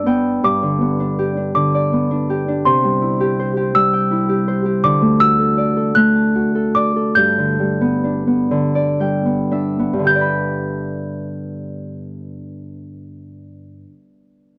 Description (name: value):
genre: children's music, lullaby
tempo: 35-55 BPM (dotted quarters)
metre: 6/8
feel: rubato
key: G major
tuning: A4 = 439 Hz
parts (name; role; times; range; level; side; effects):
- worn celesta; melody; 0.0-13.5 s; C6 to G6; -20 LUFS; equal; none
- Celtic harp; accompaniment; 0.0-13.9 s; G2 to B5; -20 LUFS; equal; none
room: little or no reverb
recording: dry, close 1970s-style studio recording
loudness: -17 LUFS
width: mono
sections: 0.4-10.1 A section; 10.1-13.5 B section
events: harp fill 0.0-0.4, 8.5-10.1; slowing down 4.8-10.1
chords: 0.4 G; 2.7 C; 4.8 D; 7.2 G